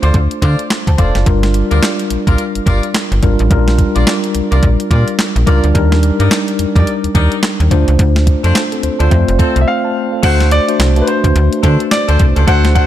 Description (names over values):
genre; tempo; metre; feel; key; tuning
R&B, new jack swing; 107 BPM; 4/4; swing 60% on 16ths; unclear; A4 = 440 Hz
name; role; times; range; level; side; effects
tine electric piano; accompaniment; 0.0-12.9 s; G3 to A5; -17 LUFS; left 1 dB; medium stereo tremolo
warm horn section; stabs; 0.0-12.9 s; C4 to D5; -22 LUFS; left 1 dB; ping-pong delay
slap-like FM bass; bass; 0.0-12.8 s; F1 to D3; -12 LUFS; equal; none
clean 12-bit digital drum machine; drums; 0.0-12.9 s; crash cymbal, handclaps, hi-hat, kick drum, snare drum; -15 LUFS; equal; none
clear baby grand piano; melody; 9.6-12.9 s; B4 to F#5; -18 LUFS; left 1 dB; none
room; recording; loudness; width
light reverb; dark, warm production; -10 LUFS; side -12 dB against mid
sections
0.0-10.2 A section; 10.2-12.9 B section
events
break 9.7-10.2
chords
0.0 Dm7; 1.3 Gm7; 3.5 Bb6; 5.7 Ebmaj7; 7.7 Dm7; 9.1 F; 10.2 D7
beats
0.14 0.70 | 1.26 1.82 2.38 2.94 | 3.50 4.07 4.63 5.19 | 5.75 6.31 6.87 7.43 | 7.99 8.55 9.11 9.67 | 10.23 10.79 11.36 11.92 | 12.48